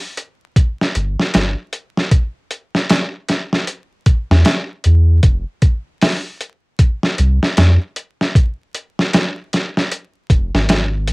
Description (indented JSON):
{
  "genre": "trip hop",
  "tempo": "77 BPM",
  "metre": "4/4",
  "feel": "swing 60% on 16ths",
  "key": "F minor",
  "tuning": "A4 = 440 Hz",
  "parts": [
    { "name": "boom bap sampler-style drum kit", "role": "drums", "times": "0.2-11.1 s", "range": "hi-hat, kick drum, snare drum", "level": "-14 LUFS", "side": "equal", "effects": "cassette tape" },
    { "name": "soft dub sub bass", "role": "bass", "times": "1.0-11.1 s", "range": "F1 to F2", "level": "-13 LUFS", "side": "equal", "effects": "none" }
  ],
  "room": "light reverb",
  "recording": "home recording on cassette, vinyl crackle",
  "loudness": "-14 LUFS",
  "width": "side -29 dB against mid",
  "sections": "0.0-11.1 A section",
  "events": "none",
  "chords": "none"
}